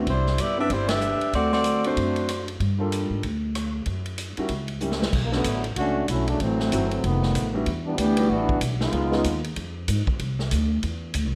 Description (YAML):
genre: jazz, big band swing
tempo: 190 BPM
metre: 4/4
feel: swing 61% on 8ths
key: B minor from 5.1 s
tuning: A4 = 440 Hz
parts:
  - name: warm upright piano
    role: accompaniment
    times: 0.0-9.2 s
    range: F#3 to A4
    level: -31 LUFS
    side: equal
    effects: none
  - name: upright bass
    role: bass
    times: 0.0-11.3 s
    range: F1 to Ab2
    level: -28 LUFS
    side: equal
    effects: none
  - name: warm saxophone section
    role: melody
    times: 0.1-2.5 s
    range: G3 to E5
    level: -26 LUFS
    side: equal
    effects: none
  - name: swinging big-band drum kit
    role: drums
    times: 0.1-11.2 s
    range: crash cymbal, hi-hat, kick drum, ride cymbal, rim click, snare drum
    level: -33 LUFS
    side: equal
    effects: none
  - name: clear trombone section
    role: second line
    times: 5.2-9.4 s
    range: C#3 to G4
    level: -28 LUFS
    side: equal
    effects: none
room: moderate large studio reverb, RT60 1.3 s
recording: none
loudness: -25 LUFS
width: mono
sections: 0.0-5.1 A section; 5.1-11.4 B section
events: band accent 0.9; drum fill 4.8-5.1; trombone section solo 5.1-11.4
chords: 0.1 Cmaj9; 1.3 D7; 2.6 Gm7; 3.9 F#7b9; 5.1 Bm9; 6.4 F#m7b5; 7.0 F7#11; 7.7 Em7; 8.9 C#9; 10.2 C